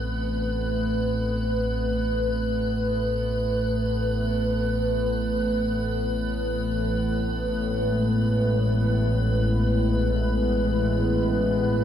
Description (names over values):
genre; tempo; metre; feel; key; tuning
dark ambient drone; free time; none; none; A harmonic minor; A4 = 443 Hz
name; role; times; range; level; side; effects
dark analog pad; sustained chords; 0.0-11.8 s; A2 to B4; -27 LUFS; equal; chorus
analog drone; drone; 0.0-11.8 s; A1 to A2; -26 LUFS; equal; chorus
icy glass pad; texture; 0.0-11.8 s; B4; -28 LUFS; equal; chorus, built-in reverb
room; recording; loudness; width
moderate huge ambient reverb, RT60 7.7 s; dark, warm production; -22 LUFS; side -9 dB against mid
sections
0.0-11.8 A section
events
fade-in on synth drone 0.0-11.8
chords
0.0 Amadd9; 7.5 E/A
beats
free time